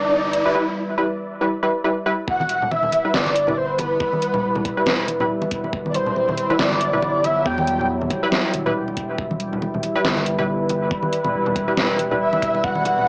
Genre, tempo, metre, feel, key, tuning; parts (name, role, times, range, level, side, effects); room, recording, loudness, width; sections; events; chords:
deep dubstep; 139 BPM; 4/4; swing 57% on 16ths, half-time; E minor; A4 = 437 Hz
breathy flute-like synth lead; melody; 0.0-7.9, 12.2-13.1 s; B4 to G5; -25 LUFS; equal; ensemble chorus, dub echo
deep dark ambient pad; sustained chords; 0.0-13.1 s; F#3 to B4; -27 LUFS; equal; chorus, built-in reverb, cassette tape
soft dub sub bass; bass; 0.0-13.1 s; E1 to E2; -34 LUFS; equal
riser; sound effects; 0.0-0.5 s; -28 LUFS; equal
dubstep drum kit; drums; 0.3-13.0 s; hi-hat, snare drum; -25 LUFS; equal; cassette tape
filtered dub chord stab; stabs; 0.5-12.2 s; G3 to B4; -26 LUFS; equal; chorus, cassette tape, dub echo
electronic kick drum; drums; 2.3-12.7 s; -31 LUFS; equal; cassette tape
congas; percussion; 2.4-13.1 s; -32 LUFS; equal
moderate studio reverb, RT60 0.6 s; home recording on cassette, small speaker sound; -21 LUFS; mono
0.0-2.3 A section; 2.3-13.1 B section
build-up 0.0-2.3; riser 0.0-0.6; break 0.6-2.3; drop 2.3-13.1
0.0 Em